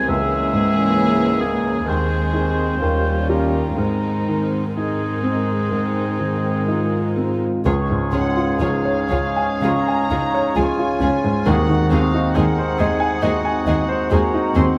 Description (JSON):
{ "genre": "classical, romantic movement for piano and orchestra", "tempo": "63 BPM", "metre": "4/4", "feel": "uneven beats, rubato", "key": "Ab major, Db major from 7.7 s", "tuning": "A4 = 440 Hz", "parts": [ { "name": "clear grand piano", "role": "melody", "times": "0.0-14.8 s", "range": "C2 to Ab5", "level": "-23 LUFS", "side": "equal", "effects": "none" }, { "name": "warm chamber violin section", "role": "second line", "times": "0.0-14.6 s", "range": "C4 to Db5", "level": "-30 LUFS", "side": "equal", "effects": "none" }, { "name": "warm oboe", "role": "second line", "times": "0.0-14.7 s", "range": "F4 to Fb5", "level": "-29 LUFS", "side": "equal", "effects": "none" }, { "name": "warm chamber viola section", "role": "accompaniment", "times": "0.0-14.6 s", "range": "Eb3 to F4", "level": "-29 LUFS", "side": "equal", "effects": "none" }, { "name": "clear French horn section", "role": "sustained chords", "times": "0.0-14.8 s", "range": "G3 to F4", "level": "-29 LUFS", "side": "equal", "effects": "none" }, { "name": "dark chamber cello section", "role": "bass", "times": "0.0-14.6 s", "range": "Db2 to Ab2", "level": "-28 LUFS", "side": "equal", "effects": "none" }, { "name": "mellow flute section", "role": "second line", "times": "7.6-14.8 s", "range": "Bb5 to Eb6", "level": "-34 LUFS", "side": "equal", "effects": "none" }, { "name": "warm clarinet", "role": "second line", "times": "7.6-14.7 s", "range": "Db4 to Gb4", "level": "-30 LUFS", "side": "equal", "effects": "none" }, { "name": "warm chamber double bass section", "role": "bass", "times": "7.7-14.6 s", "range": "Db2 to Eb2", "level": "-28 LUFS", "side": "equal", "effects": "none" }, { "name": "dark chamber violin section", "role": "melody", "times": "8.1-14.8 s", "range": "F5 to Bb5", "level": "-31 LUFS", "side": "equal", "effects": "none" }, { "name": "timpani", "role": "percussion", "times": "11.5-12.8 s", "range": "Eb3", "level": "-27 LUFS", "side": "equal", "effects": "none" } ], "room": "moderate scoring stage reverb, RT60 2.0 s", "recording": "none", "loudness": "-19 LUFS", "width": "mono", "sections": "0.0-7.7 A section; 7.7-14.8 B section", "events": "none", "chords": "0.1 Bbm7b5/Db; 1.9 Ab/Eb; 2.8 Eb13; 3.8 Ab; 7.7 Db; 11.5 Ab7/Eb" }